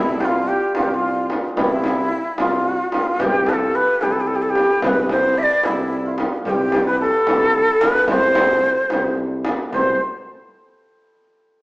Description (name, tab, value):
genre	Persian modal ensemble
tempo	74 BPM (dotted quarters)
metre	6/8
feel	straight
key	C dastgah mahur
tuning	A4 = 442 Hz
part	breathy bright ney	melody	0.0-10.0 s	E4 to E5	-18 LUFS	equal	none
part	santur	second line	0.0-10.0 s	D4 to D5	-25 LUFS	right 1 dB	none
part	mellow tuba	bass	0.0-10.0 s	C2	-25 LUFS	equal	none
part	frame drum	percussion	0.2-10.0 s	none	-23 LUFS	equal	none
room	wet stone room reverb, RT60 1.2 s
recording	band playing live in one room, small speaker sound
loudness	-16 LUFS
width	side -24 dB against mid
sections	0.0-9.7 A section; 9.7-11.4 B section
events	none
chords	none